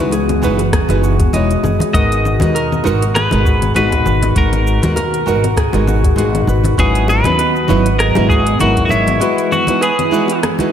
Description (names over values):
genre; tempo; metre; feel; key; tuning
sunset chillout; 99 BPM; 4/4; swing 55% on 16ths; G# minor; A4 = 442 Hz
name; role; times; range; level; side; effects
nylon-string guitar; accompaniment; 0.0-10.7 s; F#3 to A#5; -20 LUFS; moving between left 7 dB and right 6 dB; auto-pan, digital delay, slapback echo
airy breathy pad; sustained chords; 0.0-10.7 s; B2 to D#5; -21 LUFS; equal; chorus, phaser
concert harp; arpeggios; 0.0-10.7 s; F#4 to D#5; -22 LUFS; right 2 dB; digital delay, slapback echo
upright bass; bass; 0.0-9.1 s; E1 to D#2; -16 LUFS; equal; none
smooth R&B drum kit; drums; 0.1-10.7 s; cabasa, congas, hi-hat, rim click; -23 LUFS; left 3 dB; small room reverb, slapback echo
bongos and congas; percussion; 0.1-10.7 s; none; -25 LUFS; left 2 dB; none
electronic kick drum; drums; 0.7-8.9 s; none; -16 LUFS; equal; overdrive, small room reverb
twelve-string electric guitar; melody; 1.9-10.4 s; E4 to D#5; -18 LUFS; equal; tape echo, slapback echo
room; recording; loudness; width
moderate lush hall reverb, RT60 2.4 s; big arena sound; -12 LUFS; side -9 dB against mid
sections
0.0-10.7 A section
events
break 9.2-10.7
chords
0.0 F#13sus4; 1.9 G#m9; 6.8 C#m11/G#; 9.2 F#13sus4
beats
0.12 0.73 1.33 | 1.94 2.55 3.15 3.76 | 4.37 4.97 5.58 6.18 | 6.79 7.39 8.00 8.61 | 9.21 9.82 10.43